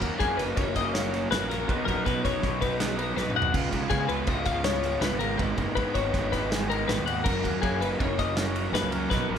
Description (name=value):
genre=math rock and midwest emo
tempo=162 BPM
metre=5/4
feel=straight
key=F# major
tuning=A4 = 440 Hz
part: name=clean electric guitar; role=accompaniment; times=0.0-9.4 s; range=F#2 to A#4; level=-33 LUFS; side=right 4 dB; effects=none
part: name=twelve-string electric guitar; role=arpeggios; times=0.0-9.4 s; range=G#4 to F#5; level=-29 LUFS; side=left 6 dB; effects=none
part: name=raw garage guitar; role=riff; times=0.0-9.4 s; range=F#2 to E#4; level=-31 LUFS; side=right 2 dB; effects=overdrive
part: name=fuzz fingered electric bass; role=bass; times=0.0-9.4 s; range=F#1 to C#3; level=-33 LUFS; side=equal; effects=overdrive
part: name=loose indie drum kit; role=drums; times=0.0-9.4 s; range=crash cymbal, kick drum, ride cymbal, snare drum, toms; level=-31 LUFS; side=equal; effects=none
room=moderate recital hall reverb, RT60 1.5 s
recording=recorded in a church or concert hall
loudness=-24 LUFS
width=side -8 dB against mid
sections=0.0-9.4 A section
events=drum fill 3.2-3.5, 9.1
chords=0.0 F#69; 1.7 Bmaj9; 3.5 C#13; 5.4 F#69